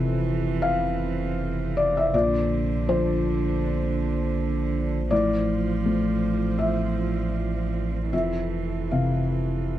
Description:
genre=neoclassical piano and strings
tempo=74-82 BPM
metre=4/4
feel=rubato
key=F major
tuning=A4 = 439 Hz
part: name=warm cello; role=second line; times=0.0-9.8 s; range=D3 to F3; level=-30 LUFS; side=right 10 dB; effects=none
part: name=felt-muted upright piano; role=accompaniment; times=0.0-9.8 s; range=F2 to F5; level=-24 LUFS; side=left 2 dB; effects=none
part: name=warm chamber string section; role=sustained chords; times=0.0-9.8 s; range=E3 to C5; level=-38 LUFS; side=right 4 dB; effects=none
part: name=saturated sub bass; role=bass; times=0.0-9.8 s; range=F1 to Bb1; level=-29 LUFS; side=equal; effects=none
room=light reverb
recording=dry, close 1970s-style studio recording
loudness=-22 LUFS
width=side -12 dB against mid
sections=0.0-9.8 A section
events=none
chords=0.0 Fmaj7; 2.1 Bbadd9; 5.1 F/A; 8.1 Fmaj7

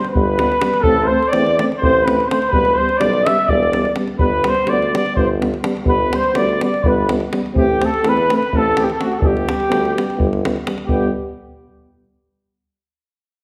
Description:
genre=balkan folk, Balkan brass band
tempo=252 BPM (eighths)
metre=7/8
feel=straight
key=G major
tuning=A4 = 440 Hz
part: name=mellow flugelhorn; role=melody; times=0.0-11.1 s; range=F#4 to E5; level=-21 LUFS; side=equal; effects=none
part: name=warm trumpet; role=second line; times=0.0-11.1 s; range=F#4 to E5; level=-26 LUFS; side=equal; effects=none
part: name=davul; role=percussion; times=0.0-11.1 s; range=none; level=-25 LUFS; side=equal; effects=none
part: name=mellow French horn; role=accompaniment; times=0.1-11.1 s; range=B3 to C4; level=-26 LUFS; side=equal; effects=none
part: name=mellow euphonium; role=accompaniment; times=0.2-11.1 s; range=G3 to A3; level=-27 LUFS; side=equal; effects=none
part: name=clear tuba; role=bass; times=0.2-11.1 s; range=E1 to E2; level=-25 LUFS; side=equal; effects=none
room=wet recital hall reverb, RT60 1.3 s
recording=none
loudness=-17 LUFS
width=mono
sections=0.0-10.9 A section; 10.9-12.5 B section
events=none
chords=0.0 G; 0.8 Am; 2.5 Em; 4.2 G; 7.5 Am; 9.2 G

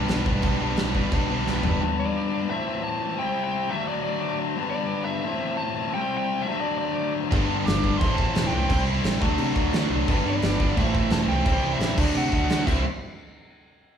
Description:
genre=punk rock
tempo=174 BPM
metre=4/4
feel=straight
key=unclear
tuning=A4 = 444 Hz
part: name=crunchy overdriven guitar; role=riff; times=0.0-1.8, 7.3-12.8 s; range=G2 to D4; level=-29 LUFS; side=right 2 dB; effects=spring reverb
part: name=tight distorted guitar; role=riff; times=0.0-12.8 s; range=G2 to F#4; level=-27 LUFS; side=left 4 dB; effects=distortion
part: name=tight distorted guitar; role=riff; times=0.0-1.8, 7.3-12.8 s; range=G2 to G4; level=-31 LUFS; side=right 8 dB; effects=distortion
part: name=modern bright picked electric bass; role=bass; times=0.0-1.8, 7.3-12.8 s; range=E1 to D3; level=-28 LUFS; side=equal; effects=none
part: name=big rock drum kit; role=drums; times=0.1-1.7, 7.3-12.8 s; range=crash cymbal, kick drum, snare drum, toms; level=-26 LUFS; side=equal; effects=none
part: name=bluesy overdriven lead guitar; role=melody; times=2.0-12.8 s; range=D5 to D6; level=-30 LUFS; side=right 2 dB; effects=distortion
room=moderate large studio reverb, RT60 0.8 s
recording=band playing live in one room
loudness=-22 LUFS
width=side -8 dB against mid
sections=0.0-1.8 A section; 1.8-12.8 B section; 12.8-14.0 C section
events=drum fill 1.5-1.8, 12.7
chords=0.0 G/B; 1.8 G; 2.5 Am; 3.2 C; 3.7 D; 4.6 G; 5.3 Am; 5.9 C; 6.5 D; 7.3 G; 8.0 Am; 8.7 C; 9.2 D; 10.1 G; 10.8 Am; 11.5 C; 12.0 D; 12.7 C; 12.8 N.C.

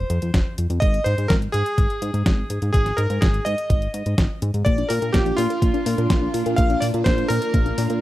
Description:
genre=italo disco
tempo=125 BPM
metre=4/4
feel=straight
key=unclear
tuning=A4 = 436 Hz
part: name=bright electric grand piano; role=melody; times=0.0-8.0 s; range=F4 to F5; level=-25 LUFS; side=equal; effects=tape echo
part: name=chorused synth bass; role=bass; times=0.0-8.0 s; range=F1 to Bb2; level=-23 LUFS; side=equal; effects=none
part: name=detuned 8-bit digital drum machine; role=drums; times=0.1-8.0 s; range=hi-hat, snare drum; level=-26 LUFS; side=equal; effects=none
part: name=electronic kick drum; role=drums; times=0.3-7.6 s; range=none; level=-21 LUFS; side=equal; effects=none
part: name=string machine, full ensemble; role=sustained chords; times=4.7-8.0 s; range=Bb3 to F4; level=-26 LUFS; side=right 1 dB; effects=ensemble chorus
part: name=warbly dusty pluck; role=arpeggios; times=4.7-8.0 s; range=Bb3 to Bb4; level=-28 LUFS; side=left 3 dB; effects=chorus, tape echo
room=little or no reverb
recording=dry, close 1970s-style studio recording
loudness=-18 LUFS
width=side -15 dB against mid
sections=0.0-8.0 A section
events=none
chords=0.0 F5; 0.8 Ab5; 4.7 Bb

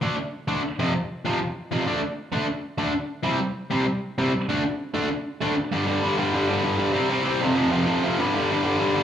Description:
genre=punk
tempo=194 BPM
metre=4/4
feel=straight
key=unclear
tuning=A4 = 440 Hz
part: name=distorted electric guitar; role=solo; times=0.0-9.0 s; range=F2 to D4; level=-22 LUFS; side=equal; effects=overdrive, slapback echo
room=moderate plate reverb, RT60 2.7 s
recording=live gig heard through the venue's PA, club reverb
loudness=-22 LUFS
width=side -9 dB against mid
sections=0.0-5.7 A section; 5.7-9.0 B section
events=half time 0.0-5.7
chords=0.0 D5; 0.8 F5; 1.9 D5; 3.3 C5; 4.5 D5; 5.7 G5; 7.0 C5; 7.4 F5; 8.2 G5

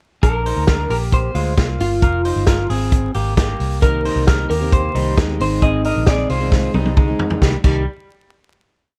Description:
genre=jangly indie pop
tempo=134 BPM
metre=4/4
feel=straight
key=C minor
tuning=A4 = 440 Hz
part: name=electric guitar through a small old amp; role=melody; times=0.2-6.7 s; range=F4 to Eb5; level=-25 LUFS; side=equal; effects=harmonic tremolo, analog delay
part: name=electric guitar through a small old amp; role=arpeggios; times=0.2-7.9 s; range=G3 to C5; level=-27 LUFS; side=equal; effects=none
part: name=vintage muted picked electric bass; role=bass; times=0.2-7.9 s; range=F1 to Eb2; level=-23 LUFS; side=equal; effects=none
part: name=vintage drum kit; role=drums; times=0.2-7.7 s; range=crash cymbal, hi-hat, kick drum, snare drum, toms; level=-20 LUFS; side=equal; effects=none
part: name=fingerpicked plugged-in steel-string acoustic guitar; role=accompaniment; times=3.8-7.8 s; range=Ab2 to Ab4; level=-27 LUFS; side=equal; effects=none
room=light reverb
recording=vinyl crackle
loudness=-17 LUFS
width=mono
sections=0.2-7.4 pre-chorus; 7.4-9.0 final chord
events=drum fill 6.5-7.4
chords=0.2 Bbadd9; 2.0 Fm; 3.6 Cm7; 5.4 Ab; 7.4 Cm7

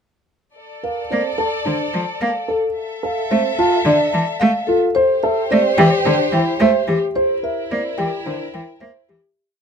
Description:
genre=classical, minimalist pattern music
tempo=109 BPM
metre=4/4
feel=straight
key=Bb lydian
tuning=A4 = 444 Hz
part: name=rich chamber string section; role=sustained chords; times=0.6-9.2 s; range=E4 to E5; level=-25 LUFS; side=equal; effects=none
part: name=marimba with soft mallets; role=melody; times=0.8-9.3 s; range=G4 to A5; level=-20 LUFS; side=left 4 dB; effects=none
part: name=dark baby grand piano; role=arpeggios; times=0.8-9.3 s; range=C4 to C5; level=-20 LUFS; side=right 4 dB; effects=none
part: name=rich cello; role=accompaniment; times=1.1-9.2 s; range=D3 to Bb3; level=-19 LUFS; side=right 2 dB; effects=none
room=little or no reverb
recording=close, detailed microphones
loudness=-16 LUFS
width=side -6 dB against mid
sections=0.6-9.4 A section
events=fade-out 7.2-9.4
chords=0.6 Bbmaj7; 2.8 Fmaj7; 5.0 Am7; 7.2 C7

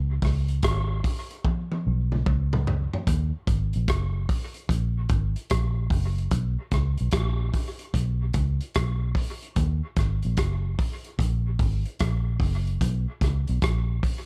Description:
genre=roots reggae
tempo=74 BPM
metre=4/4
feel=swing 65% on 16ths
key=Eb minor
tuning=A4 = 438 Hz
part: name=vintage muted fingered electric bass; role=bass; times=0.0-14.0 s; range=Gb1 to Eb2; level=-27 LUFS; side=equal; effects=none
part: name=crunchy breakbeat drum kit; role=drums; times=0.2-14.3 s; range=hi-hat, kick drum, rim click, toms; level=-29 LUFS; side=equal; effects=none
room=little or no reverb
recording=echo-heavy mix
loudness=-26 LUFS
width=mono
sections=0.0-3.1 A section; 3.1-14.3 B section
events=drum fill 1.4-3.1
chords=none

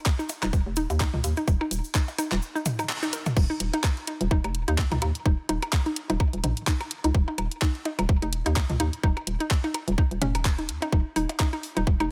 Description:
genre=minimal techno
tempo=127 BPM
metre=4/4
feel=swing 56% on 16ths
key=unclear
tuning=A4 = 439 Hz
part: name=electronic kick drum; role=drums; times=0.1-12.0 s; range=none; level=-25 LUFS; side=equal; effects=overdrive
part: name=garage drum kit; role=drums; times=0.1-12.1 s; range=crash cymbal, handclaps, hi-hat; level=-34 LUFS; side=equal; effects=overdrive
part: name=cabasa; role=percussion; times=0.1-3.3 s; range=none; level=-41 LUFS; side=equal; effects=none
part: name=hollow square pluck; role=riff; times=0.2-12.0 s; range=Db4 to Bb4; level=-33 LUFS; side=equal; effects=chorus, sidechain pumping, tape echo
part: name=electronic percussion blips and toms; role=percussion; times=0.3-12.1 s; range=none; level=-35 LUFS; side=equal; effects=overdrive, digital delay
part: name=hollow knocking FM bass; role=bass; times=0.4-12.1 s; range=Eb1 to Eb2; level=-30 LUFS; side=equal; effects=sidechain pumping
room=little or no reverb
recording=none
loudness=-26 LUFS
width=mono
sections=0.0-3.4 A section; 3.4-12.1 B section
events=kick drops out 2.4-3.4; band accent 2.9; drop 3.4-12.1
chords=0.0 Eb5

